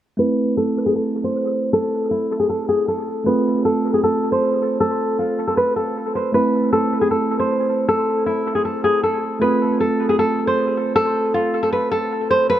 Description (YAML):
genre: hip hop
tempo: 156 BPM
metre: 4/4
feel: half-time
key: A harmonic minor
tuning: A4 = 439 Hz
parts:
  - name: nylon-string guitar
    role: melody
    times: 0.2-12.6 s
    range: E4 to C5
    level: -18 LUFS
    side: left 1 dB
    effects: low-pass filter, dub echo
  - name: mellow tine electric piano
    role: accompaniment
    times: 0.2-12.5 s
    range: A3 to F4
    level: -22 LUFS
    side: right 3 dB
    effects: low-pass filter
room: moderate spring reverb, RT60 2.6 s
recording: echo-heavy mix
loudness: -17 LUFS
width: side -11 dB against mid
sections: 0.2-12.5 A section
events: filter sweep 0.2-12.5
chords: 0.2 Am; 3.3 F/A; 6.3 Am; 9.4 F/A